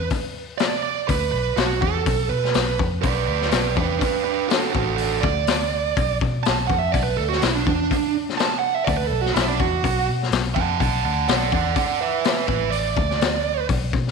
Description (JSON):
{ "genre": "blues rock power trio and southern rock", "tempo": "124 BPM", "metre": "4/4", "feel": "straight", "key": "B minor", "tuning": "A4 = 440 Hz", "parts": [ { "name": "bluesy overdriven lead guitar", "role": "second line", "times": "0.0-13.7 s", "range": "D4 to A5", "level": "-22 LUFS", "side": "right 9 dB", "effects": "distortion, slapback echo" }, { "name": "vintage muted fingered electric bass", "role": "bass", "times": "0.0-14.1 s", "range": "A1 to B2", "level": "-25 LUFS", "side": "left 1 dB", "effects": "none" }, { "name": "raw garage drum kit", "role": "drums", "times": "0.1-14.1 s", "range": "hi-hat, kick drum, snare drum", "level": "-24 LUFS", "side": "left 6 dB", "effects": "none" } ], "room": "moderate echo chamber reverb, RT60 1.7 s, small room ambience", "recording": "1960s-style stereo with parts hard left and right", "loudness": "-19 LUFS", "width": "side -4 dB against mid", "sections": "0.0-14.1 A section", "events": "lead electric guitar solo 0.0-14.1", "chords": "0.0 Bm", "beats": "| 0.11 0.60 1.09 1.58 | 2.07 2.56 3.04 3.53 | 4.02 4.51 5.00 5.48 | 5.97 6.45 6.94 7.42 | 7.91 8.39 8.88 9.36 | 9.84 10.32 10.81 11.29 | 11.77 12.25 12.73 13.21 | 13.69" }